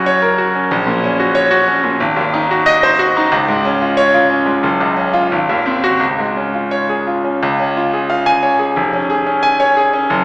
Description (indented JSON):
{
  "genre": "classical, virtuoso piano study",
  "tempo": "90 BPM",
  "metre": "2/4",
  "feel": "rubato",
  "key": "Db major",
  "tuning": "A4 = 441 Hz",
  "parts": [
    { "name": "bright concert grand piano", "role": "solo", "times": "0.0-10.2 s", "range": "F1 to Ab5", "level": "-12 LUFS", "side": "equal", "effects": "none" }
  ],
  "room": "wet recital hall reverb, RT60 1.5 s",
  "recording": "recorded in a church or concert hall, small speaker sound",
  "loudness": "-12 LUFS",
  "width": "side -23 dB against mid",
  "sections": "0.0-7.4 A section; 7.4-10.2 A section",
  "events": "none",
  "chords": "0.0 Gb; 0.7 Gb/Bb; 2.0 Ab7; 3.3 Db; 4.6 Gb5; 5.3 Ab7; 6.0 Db; 8.8 Db/F",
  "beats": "0.06 | 0.71 1.36 | 2.00 2.66 | 3.31 3.98 | 4.64 5.33 | 6.02 6.73 | 7.43 8.11 | 8.78 9.44 | 10.10"
}